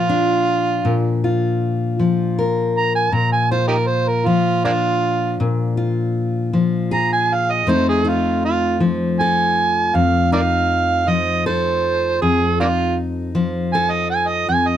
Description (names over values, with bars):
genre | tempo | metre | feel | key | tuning
acoustic country blues, solo or duo | 53 BPM (dotted quarters) | 12/8 | straight | F mixolydian | A4 = 439 Hz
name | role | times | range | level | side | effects
overdriven harmonica | melody | 0.0-14.8 s | Bb3 to Bb5 | -18 LUFS | right 4 dB | none
fingerpicked steel-string acoustic guitar | accompaniment | 0.0-14.8 s | F2 to Bb4 | -18 LUFS | left 3 dB | none
room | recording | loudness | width
moderate small room reverb, RT60 0.6 s | dark, warm production | -16 LUFS | side -10 dB against mid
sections
0.0-14.8 A section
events
none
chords
0.0 Bb; 7.7 F7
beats
0.85 1.99 | 3.13 4.27 5.41 6.54 | 7.68 8.81 9.94 11.07 | 12.21 13.34 14.47